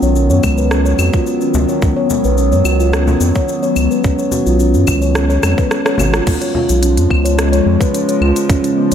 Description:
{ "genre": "organic downtempo", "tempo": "108 BPM", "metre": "4/4", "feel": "straight", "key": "Db mixolydian", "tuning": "A4 = 440 Hz", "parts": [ { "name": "warbly tape-like pad", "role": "sustained chords", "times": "0.0-8.9 s", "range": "Db3 to F4", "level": "-19 LUFS", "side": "left 1 dB", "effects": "chorus, built-in reverb, phaser, sidechain pumping" }, { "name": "steel tongue drum", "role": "arpeggios", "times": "0.0-8.9 s", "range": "Ab3 to Db5", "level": "-16 LUFS", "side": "equal", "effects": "digital delay, slapback echo" }, { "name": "round analog bass", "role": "bass", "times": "0.0-8.9 s", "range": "Ab1 to Gb2", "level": "-15 LUFS", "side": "equal", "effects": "sidechain pumping" }, { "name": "organic electronic drum kit", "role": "drums", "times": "0.0-8.9 s", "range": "claves, crash cymbal, hi-hat, rim click, shaker", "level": "-21 LUFS", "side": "left 1 dB", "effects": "overdrive" }, { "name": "electronic kick drum", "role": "drums", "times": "0.4-8.6 s", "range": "none", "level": "-17 LUFS", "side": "equal", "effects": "overdrive" }, { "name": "frame drum", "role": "percussion", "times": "1.5-6.7 s", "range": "none", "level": "-25 LUFS", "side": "left 2 dB", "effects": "none" } ], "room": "moderate lush hall reverb, RT60 1.9 s", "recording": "big arena sound", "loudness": "-11 LUFS", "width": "side -8 dB against mid", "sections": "0.0-6.3 A section; 6.3-8.9 B section", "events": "drum fill 5.4-6.3", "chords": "0.0 Cb; 6.3 Db", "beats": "0.16 0.71 1.27 | 1.82 2.38 2.94 3.49 | 4.05 4.60 5.16 5.71 | 6.27 6.83 7.38 7.94 | 8.49" }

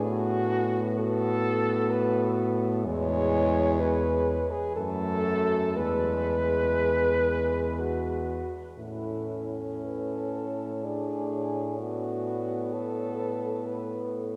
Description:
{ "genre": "classical, lyrical piece for horn quartet", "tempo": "55-65 BPM", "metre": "3/4", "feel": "rubato", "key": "unclear", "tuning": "A4 = 440 Hz", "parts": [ { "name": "dark French horn", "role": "melody", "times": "0.0-14.4 s", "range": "E4 to D5", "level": "-38 LUFS", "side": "equal", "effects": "none" }, { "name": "warm French horn", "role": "second line", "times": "0.0-14.1 s", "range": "E4 to C#5", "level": "-32 LUFS", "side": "equal", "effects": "none" }, { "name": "warm French horn", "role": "accompaniment", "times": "0.0-14.4 s", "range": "G#3 to D4", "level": "-36 LUFS", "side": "equal", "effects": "none" }, { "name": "warm French horn", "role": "bass", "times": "0.0-14.4 s", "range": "E2 to A2", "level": "-33 LUFS", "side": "equal", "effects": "none" } ], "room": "wet cathedral reverb, RT60 4.4 s", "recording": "recorded in a church or concert hall", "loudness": "-28 LUFS", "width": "mono", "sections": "0.0-14.4 A section", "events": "none", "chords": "0.0 B5/A; 2.9 E; 4.8 F#m; 5.8 E; 8.8 A; 10.8 D5/A; 11.8 Bm7/A", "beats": "| 0.05 0.98 1.91 | 2.85 3.79 4.76 | 5.76 6.77 7.79 | 8.78 9.84 10.84 | 11.79 12.74 13.67" }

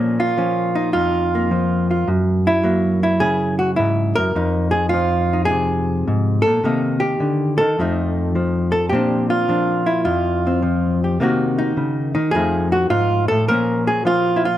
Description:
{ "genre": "solo jazz", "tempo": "105 BPM", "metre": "4/4", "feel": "swing 69% on 8ths", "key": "Bb minor", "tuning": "A4 = 441 Hz", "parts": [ { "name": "hollow-body jazz guitar", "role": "solo", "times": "0.0-14.6 s", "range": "F2 to Bb4", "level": "-16 LUFS", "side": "equal", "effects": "none" } ], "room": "light reverb", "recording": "close, detailed microphones", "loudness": "-16 LUFS", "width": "side -12 dB against mid", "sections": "0.0-14.6 A section", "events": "none", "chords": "0.0 Bbm; 2.1 Gb7; 4.3 Fm7; 6.6 Cm7; 7.8 F7; 8.9 Bb69; 11.2 Cm7b5; 12.3 F7#9; 13.5 Bbm", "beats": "0.36 0.93 1.50 | 2.07 2.64 3.21 3.78 | 4.35 4.92 5.49 6.06 | 6.63 7.20 7.77 8.34 | 8.91 9.48 10.05 10.62 | 11.19 11.76 12.33 12.90 | 13.47 14.04" }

